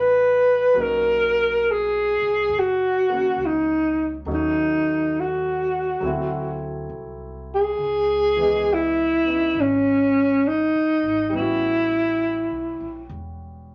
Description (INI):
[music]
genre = jazz ballad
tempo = 68 BPM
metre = 4/4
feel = swing 67% on 8ths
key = unclear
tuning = A4 = 441 Hz
[part]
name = breathy alto saxophone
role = melody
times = 0.0-13.1 s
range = C#4 to B4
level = -21 LUFS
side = equal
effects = none
[part]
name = clear baby grand piano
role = accompaniment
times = 0.0-13.7 s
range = E3 to D#5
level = -35 LUFS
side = equal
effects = none
[part]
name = upright bass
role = bass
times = 0.0-13.7 s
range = E1 to D#2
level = -38 LUFS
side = equal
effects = none
[sound]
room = wet club reverb, RT60 0.6 s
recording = nothing above 7.5 kHz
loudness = -21 LUFS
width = mono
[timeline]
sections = 0.0-13.7 A section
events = none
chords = 0.0 A9; 0.8 Bmaj7; 4.3 D#m7b5; 6.0 D9; 7.8 C#m9; 11.3 A13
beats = | 0.76 1.63 2.51 3.38 | 4.26 5.14 6.02 6.91 | 7.79 8.68 9.56 10.45 | 11.34 12.22 13.10